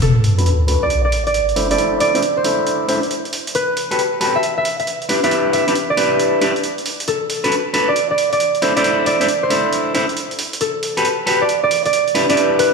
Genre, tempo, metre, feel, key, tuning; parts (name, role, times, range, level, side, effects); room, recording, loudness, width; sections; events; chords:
UK garage, two-step garage; 136 BPM; 4/4; swing 66% on 16ths; A4 = 440 Hz
concert harp; melody; 0.0-12.7 s; A4 to E5; -19 LUFS; right 2 dB; tape echo
electronic hi-hat; drums; 0.0-12.7 s; -25 LUFS; right 3 dB; overdrive
sub drop; sound effects; 0.0-1.8 s; -16 LUFS; equal
clean electric guitar; stabs; 0.4-12.7 s; D4 to C5; -18 LUFS; left 1 dB; low-pass filter, ping-pong delay
moderate lush hall reverb, RT60 1.9 s; played on a big sound system in a bare room, large studio reverb; -15 LUFS; side -4 dB against mid
0.0-12.7 A section
impact 0.0-1.8; filter sweep on clean electric guitar 0.0-12.7
0.0 Bm7; 1.6 C69; 3.5 Gmaj9; 5.1 Em7; 7.1 Bm7; 8.6 C69; 10.6 Gmaj9; 12.2 Em7